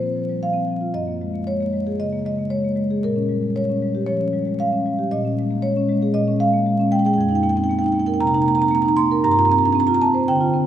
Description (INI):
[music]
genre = classical, contemporary piece for solo marimba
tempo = 116 BPM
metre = 4/4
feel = straight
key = unclear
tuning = A4 = 439 Hz
[part]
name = marimba with soft mallets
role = solo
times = 0.0-10.7 s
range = F2 to C6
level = -18 LUFS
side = right 1 dB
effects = none
[sound]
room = wet church reverb, RT60 3.3 s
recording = minimal, uncompressed stereo recording, vinyl crackle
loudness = -18 LUFS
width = side -10 dB against mid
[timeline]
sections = 0.0-10.7 A section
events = none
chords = 0.0 Bbsus2; 1.0 Gb69; 3.0 Bbm6; 5.1 Absus24/Bb; 7.2 F9sus4; 9.2 Gm7